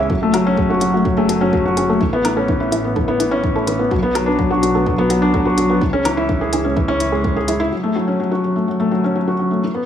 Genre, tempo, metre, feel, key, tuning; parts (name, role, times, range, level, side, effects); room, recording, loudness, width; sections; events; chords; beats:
piano and strings electronica; 126 BPM; 4/4; straight; F# minor; A4 = 438 Hz
soft round pluck; arpeggios; 0.0-7.5 s; E4 to C#5; -24 LUFS; right 3 dB; chorus, sidechain pumping, digital delay
felt-muted upright piano; riff; 0.0-9.9 s; E3 to E5; -16 LUFS; left 1 dB; digital delay
dark detuned saw bass; bass; 0.0-7.7 s; F#1 to C#2; -26 LUFS; equal; sidechain pumping
electronic kick drum; drums; 0.1-7.3 s; -23 LUFS; equal
electronic hi-hat and woodblock; drums; 0.3-7.6 s; -26 LUFS; left 2 dB
moderate scoring stage reverb, RT60 2.0 s; small room ambience; -15 LUFS; side -9 dB against mid
0.0-7.7 A section; 7.7-9.9 B section
0.1 F#madd9; 2.0 Aadd9; 3.9 Bm7; 5.8 C#m; 7.7 F#m
| 0.10 0.58 1.05 1.53 | 2.01 2.48 2.96 3.44 | 3.91 4.39 4.86 5.34 | 5.82 6.29 6.77 7.24 | 7.72 8.20 8.67 9.15 | 9.62